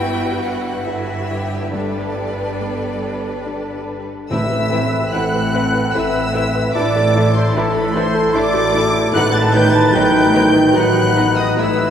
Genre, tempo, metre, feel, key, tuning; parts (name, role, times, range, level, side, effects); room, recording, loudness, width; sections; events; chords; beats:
cinematic, emotional film score for orchestra; 69-77 BPM; 3/4; rubato; A dorian; A4 = 441 Hz
clear violin; melody; 0.0-3.8 s; D5 to G5; -29 LUFS; left 2 dB
dark symphonic violin section; melody; 0.0-11.9 s; G4 to A6; -24 LUFS; left 1 dB
warm symphonic violin section; second line; 0.0-11.7 s; D#4 to B4; -27 LUFS; equal
felt-muted upright piano; accompaniment; 0.0-11.9 s; G2 to F#5; -22 LUFS; equal
rich studio viola section; accompaniment; 0.0-11.7 s; E3 to E4; -28 LUFS; right 2 dB
concert harp; arpeggios; 0.0-11.9 s; G2 to B4; -27 LUFS; left 3 dB
rich studio cello section; bass; 0.0-11.9 s; G2 to A2; -26 LUFS; right 1 dB
rich symphonic double bass section; bass; 0.0-11.9 s; G1 to A1; -24 LUFS; right 1 dB
small flute group; second line; 4.3-11.9 s; A4 to A5; -21 LUFS; right 2 dB
warm clarinet; second line; 4.3-11.9 s; C4 to E4; -24 LUFS; equal
warm oboe; second line; 4.3-11.9 s; A4 to B4; -23 LUFS; equal
mellow French horn section; sustained chords; 4.3-11.9 s; D#3 to B4; -23 LUFS; left 2 dB
timpani; percussion; 4.3-10.3 s; A2; -26 LUFS; equal
wet church reverb, RT60 3.3 s; -14 LUFS; side -9 dB against mid
0.0-4.3 A section; 4.3-11.9 B section
0.0 Emadd9/G; 1.7 Gadd9; 4.3 Amadd9; 6.8 Dsus2/A; 9.1 B7/A
0.02 0.87 | 1.74 2.61 3.46 | 4.31 5.14 5.95 | 6.76 7.56 8.35 | 9.15 9.94 10.76 | 11.59